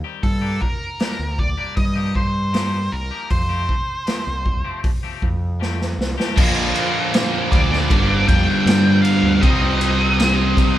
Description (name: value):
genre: quiet-loud alternative rock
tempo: 78 BPM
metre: 4/4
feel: straight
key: G minor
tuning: A4 = 440 Hz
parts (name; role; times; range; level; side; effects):
- twangy electric guitar; arpeggios; 0.0-6.4 s; Eb3 to G4; -31 LUFS; left 8 dB; none
- octave-fuzz lead guitar; melody; 0.2-10.8 s; A4 to G5; -24 LUFS; equal; distortion
- growling picked electric bass; bass; 0.2-10.7 s; G1 to C3; -22 LUFS; equal; overdrive
- raw garage drum kit; drums; 0.2-10.8 s; crash cymbal, hi-hat, kick drum, ride cymbal, snare drum; -20 LUFS; equal; none
- fuzz guitar; riff; 6.4-10.8 s; G2 to C4; -20 LUFS; equal; distortion
- high-gain distorted guitar; riff; 6.4-10.8 s; G2 to Eb4; -22 LUFS; equal; distortion
room: moderate stone room reverb, RT60 1.1 s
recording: band playing live in one room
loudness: -16 LUFS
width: side -13 dB against mid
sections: 0.0-6.4 A section; 6.4-10.8 B section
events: drum fill 5.6-6.4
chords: 0.2 Gm; 1.8 Ebadd9/G; 3.3 Fadd9; 6.4 Bb; 7.9 Gm; 9.4 Cm